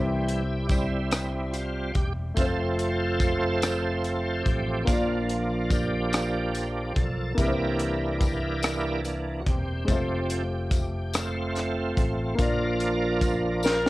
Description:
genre	slow gospel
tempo	48 BPM (dotted quarters)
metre	6/8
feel	straight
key	Bb major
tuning	A4 = 443 Hz
part	warm concert grand piano	accompaniment	0.0-13.9 s	Bb2 to D5	-32 LUFS	left 2 dB	cassette tape
part	bright tonewheel organ	sustained chords	0.0-13.9 s	E3 to C5	-28 LUFS	right 2 dB	slow rotary speaker, overdrive, chorus vibrato, cassette tape
part	fingered electric bass	bass	0.0-13.9 s	E1 to C2	-31 LUFS	equal	none
part	crisp fusion drum kit	drums	0.3-13.9 s	hi-hat, kick drum, rim click, snare drum	-27 LUFS	equal	cassette tape
part	tambourine	percussion	0.7-13.9 s	none	-41 LUFS	left 5 dB	none
part	clear saxophone section	melody	13.6-13.9 s	Bb4	-23 LUFS	left 1 dB	cassette tape
room	light reverb, small room ambience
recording	home recording on cassette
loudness	-24 LUFS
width	side -18 dB against mid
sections	0.0-13.9 A section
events	tonewheel organ solo 0.0-13.9; drum fill 13.6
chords	0.0 C; 2.4 F; 4.9 Bb; 7.4 C7; 9.9 F; 12.4 Bb

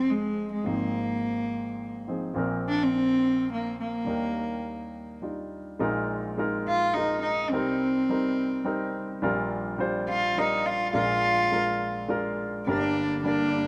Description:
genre	acoustic folk-pop ballad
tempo	105 BPM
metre	3/4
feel	straight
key	unclear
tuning	A4 = 441 Hz
part	warm cello	melody	0.0-13.7 s	Ab3 to F4	-28 LUFS	equal	none
part	warm grand piano	accompaniment	0.0-13.7 s	F1 to C5	-32 LUFS	equal	none
part	warm studio string section	sustained chords	12.7-13.7 s	G2 to Bb3	-36 LUFS	equal	none
room	moderate plate reverb, RT60 2.6 s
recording	none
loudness	-27 LUFS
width	mono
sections	0.0-5.8 A section; 5.8-12.7 B section; 12.7-13.7 C section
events	none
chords	0.0 Fm7; 0.7 Ab6; 2.4 Bbsus2; 4.1 Ebmaj7; 5.8 Bb7sus4; 7.5 Cm7; 9.2 Gm7/Bb; 10.9 Bb7; 12.7 Gm

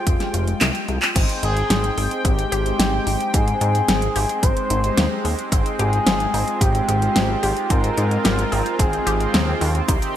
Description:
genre	synthwave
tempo	110 BPM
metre	4/4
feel	straight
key	unclear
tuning	A4 = 440 Hz
part	chorused pulse-width pad	sustained chords	0.0-10.2 s	C3 to G5	-27 LUFS	equal	sidechain pumping
part	mellow synth brass	stabs	0.0-10.2 s	Ab3 to G5	-30 LUFS	right 2 dB	chorus, digital delay
part	wide unison pluck	arpeggios	0.1-10.0 s	C4 to Ab4	-31 LUFS	left 3 dB	digital delay
part	fat analog bass	bass	0.1-10.0 s	F1 to Ab2	-22 LUFS	equal	none
part	electronic kick drum	drums	0.1-10.0 s	none	-20 LUFS	equal	overdrive
part	pop drum kit	drums	0.1-10.1 s	crash cymbal, handclaps, hi-hat, shaker, snare drum	-23 LUFS	equal	overdrive
part	expressive portamento lead	melody	1.4-9.6 s	G4 to C5	-24 LUFS	left 1 dB	chorus, ping-pong delay
room	light reverb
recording	bright 1980s-style digital production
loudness	-17 LUFS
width	side -11 dB against mid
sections	0.0-1.2 A section; 1.2-10.2 B section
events	drum fill 0.6-1.2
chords	0.0 Fmadd9; 1.2 Abmaj7

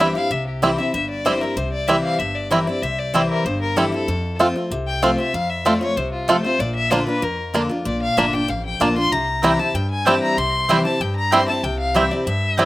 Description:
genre	bluegrass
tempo	191 BPM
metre	4/4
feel	straight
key	C mixolydian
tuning	A4 = 440 Hz
part	rich fiddle	second line	0.0-12.7 s	F4 to C6	-23 LUFS	left 2 dB	slapback echo
part	picked steel-string acoustic guitar	accompaniment	0.0-12.7 s	F2 to F4	-22 LUFS	left 1 dB	none
part	bluegrass banjo	arpeggios	0.0-12.7 s	G3 to F4	-18 LUFS	right 2 dB	none
part	upright bass	bass	0.0-12.7 s	G1 to G2	-28 LUFS	equal	none
part	mandolin	stabs	9.4-12.7 s	C4 to G5	-24 LUFS	right 6 dB	none
room	little or no reverb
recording	recorded outdoors, with no room sound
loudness	-17 LUFS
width	side -17 dB against mid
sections	0.0-12.7 A section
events	fiddle solo 0.0-12.7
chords	0.0 C; 4.1 F; 6.6 Bb; 9.1 C

